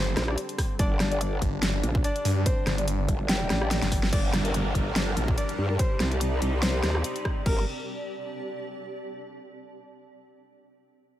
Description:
heavy wobble dubstep; 144 BPM; 4/4; swing 55% on 16ths, half-time; G minor; A4 = 435 Hz
bright concert grand piano; melody; 0.0-7.6 s; G3 to D5; -35 LUFS; left 1 dB; digital delay
supersaw pad; sustained chords; 0.0-7.7 s; C3 to Bb4; -36 LUFS; equal; phaser, sidechain pumping, low-pass filter
snarling distorted saw bass; bass; 0.0-4.1 s; G1 to G2; -26 LUFS; equal; distortion, overdrive
granular cloud pad; texture; 0.3-9.1 s; C4 to A5; -39 LUFS; equal; built-in reverb, sidechain pumping
growl bass; bass; 0.2-7.7 s; G1 to G2; -27 LUFS; equal; chorus, overdrive
dubstep drum kit; drums; 0.2-7.6 s; crash cymbal, hi-hat, rim click, snare drum; -30 LUFS; equal; overdrive, studio reverb
dark brass ensemble; stabs; 0.3-7.6 s; D4 to D5; -36 LUFS; left 3 dB; digital delay
electronic kick drum; drums; 0.6-7.6 s; -26 LUFS; equal; studio reverb
downlifter; sound effects; 4.1-7.5 s; -37 LUFS; right 1 dB
little or no reverb; -24 LUFS; side -13 dB against mid
0.0-4.1 A section; 4.1-7.5 B section; 7.5-9.1 C section
drop 0.0-4.1; drum fill 3.7-4.1; band accent 4.0
0.0 G5; 4.1 Gm; 5.8 Cm; 7.5 Gm

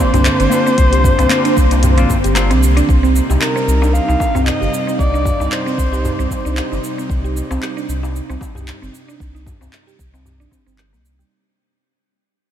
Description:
organic downtempo; 114 BPM; 4/4; swing 56% on 16ths; C minor; A4 = 439 Hz
dark kamancheh; melody; 0.0-6.6 s; Bb4 to F5; -20 LUFS; left 1 dB; diffuse ambient delay
semi-hollow electric guitar; accompaniment; 0.0-2.5 s; Bb3 to F4; -23 LUFS; left 2 dB; sidechain pumping, diffuse ambient delay
airy breathy pad; sustained chords; 0.0-11.3 s; C3 to Eb4; -24 LUFS; right 2 dB; chorus, sidechain pumping
organic electronic drum kit; drums; 0.0-11.3 s; cabasa, handclaps, hi-hat; -24 LUFS; equal
darbuka; percussion; 0.0-11.0 s; -25 LUFS; left 2 dB
mallet-like synth pluck; arpeggios; 0.1-11.3 s; G3 to G4; -21 LUFS; right 2 dB; chorus, diffuse ambient delay
warm sub bass; bass; 0.1-11.2 s; G1 to C2; -16 LUFS; equal; sidechain pumping
electronic kick drum; drums; 0.8-10.6 s; -18 LUFS; equal
moderate huge ambient reverb, RT60 8.0 s; dreamy mix soaked in reverb; -13 LUFS; side -10 dB against mid
0.0-2.9 A section; 2.9-11.3 B section
fade-out 2.9-11.3
0.0 Bbadd9; 2.9 Cm

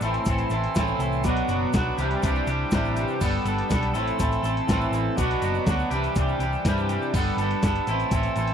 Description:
indie rock; 122 BPM; 4/4; straight; A4 = 442 Hz
overdriven combo organ; sustained chords; 0.0-8.5 s; A4 to E6; -38 LUFS; left 2 dB
twangy electric guitar; riff; 0.0-8.5 s; A2 to A4; -24 LUFS; equal; double-tracked left and right
hollow-body short-scale picked electric bass; bass; 0.0-8.5 s; F#1 to G2; -28 LUFS; equal
lo-fi sampler-style drum kit; drums; 0.0-8.5 s; crash cymbal, hi-hat, kick drum, snare drum; -26 LUFS; equal; overdrive
tube shaker; percussion; 0.0-8.5 s; -46 LUFS; right 20 dB
little or no reverb; dry, close 1970s-style studio recording; -22 LUFS; side -8 dB against mid
0.0-8.5 A section
0.0 Am; 1.2 Bm; 2.0 Cadd9; 3.2 Gadd9; 3.9 Am; 5.2 Bm; 5.9 Cadd9; 7.1 Gadd9; 7.9 Am

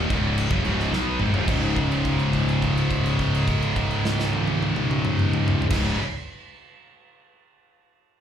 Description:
heavy metal; 105 BPM; 4/4; straight; A4 = 441 Hz
heavy high-gain guitar; riff; 0.0-6.0 s; C#2 to B3; -28 LUFS; right 9 dB; distortion
heavy high-gain guitar; riff; 0.0-6.0 s; C#2 to B3; -29 LUFS; equal; distortion
scooped high-gain guitar; riff; 0.0-6.0 s; C#2 to B3; -27 LUFS; left 7 dB; distortion
fuzz fingered electric bass; bass; 0.0-6.0 s; C#1 to B1; -26 LUFS; equal; overdrive
modern studio drum kit; drums; 0.1-5.9 s; crash cymbal, kick drum, snare drum, toms; -26 LUFS; equal
small room ambience; live gig heard through the venue's PA, club reverb; -20 LUFS; side -9 dB against mid
0.0-1.5 A section; 1.5-6.1 B section
slowing down 0.0-1.5; drum fill 0.9-1.5; held note 1.5-5.7
0.0 C#5

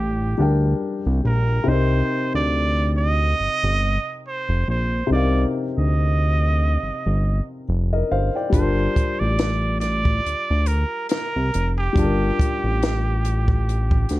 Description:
R&B, neo-soul; 70 BPM; 4/4; swing 56% on 16ths; G minor; A4 = 440 Hz
trumpet with straight mute; melody; 0.0-14.2 s; G4 to Eb5; -25 LUFS; right 3 dB; slapback echo
warm baby grand piano; accompaniment; 0.0-14.2 s; C3 to A5; -26 LUFS; left 3 dB
fat analog bass; bass; 0.0-14.2 s; F1 to D2; -20 LUFS; equal
compact cocktail drum kit; drums; 8.5-14.2 s; hi-hat, kick drum, snare drum; -22 LUFS; equal
light reverb; dark, warm production; -18 LUFS; side -17 dB against mid
0.0-14.2 A section
0.0 Gm9; 1.7 Cm9; 8.5 Gm9

